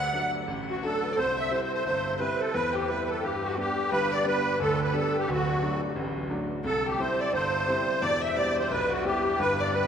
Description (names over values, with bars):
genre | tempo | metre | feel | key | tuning
celtic folk, Celtic hornpipe | 175 BPM | 4/4 | swing 61% on 8ths | G major | A4 = 439 Hz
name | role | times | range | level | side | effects
musette accordion | melody | 0.0-9.9 s | F#4 to F#5 | -27 LUFS | right 1 dB | none
dark fiddle | second line | 0.0-9.9 s | F#4 to F#5 | -33 LUFS | left 6 dB | none
bright grand piano | accompaniment | 0.0-9.9 s | D1 to E4 | -31 LUFS | equal | none
room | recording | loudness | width
wet cathedral reverb, RT60 5.7 s | recorded in a church or concert hall | -25 LUFS | side -8 dB against mid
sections
0.0-3.9 A section; 3.9-9.9 A section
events
none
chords
0.0 D; 1.2 C; 2.5 Em; 3.2 G; 5.3 D; 6.7 C; 8.0 Em